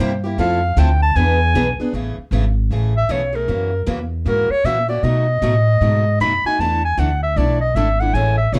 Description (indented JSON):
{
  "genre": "acoustic string swing (jazz manouche)",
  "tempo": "155 BPM",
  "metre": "4/4",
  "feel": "swing 63% on 8ths",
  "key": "A major",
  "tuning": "A4 = 441 Hz",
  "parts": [
    { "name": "breathy clarinet", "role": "melody", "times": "0.0-8.6 s", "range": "Bb4 to B5", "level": "-21 LUFS", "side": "equal", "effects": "none" },
    { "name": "picked steel-string acoustic guitar", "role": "accompaniment", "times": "0.0-8.6 s", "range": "B2 to A4", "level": "-27 LUFS", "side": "equal", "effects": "none" },
    { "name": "picked steel-string acoustic guitar", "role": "accompaniment", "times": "0.0-1.7, 8.1-8.6 s", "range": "C3 to B4", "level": "-28 LUFS", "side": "equal", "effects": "none" },
    { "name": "upright bass", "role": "bass", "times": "0.0-8.6 s", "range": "G#1 to B2", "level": "-20 LUFS", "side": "equal", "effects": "none" }
  ],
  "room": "light reverb",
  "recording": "dark, warm production",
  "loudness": "-18 LUFS",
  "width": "mono",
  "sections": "0.0-1.9 A section; 1.9-8.6 A section",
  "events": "clarinet solo 0.0-8.6",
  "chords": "0.4 Fmaj7; 1.2 E7; 1.9 Amaj7; 3.5 F#7; 5.0 B7; 6.6 E7sus4"
}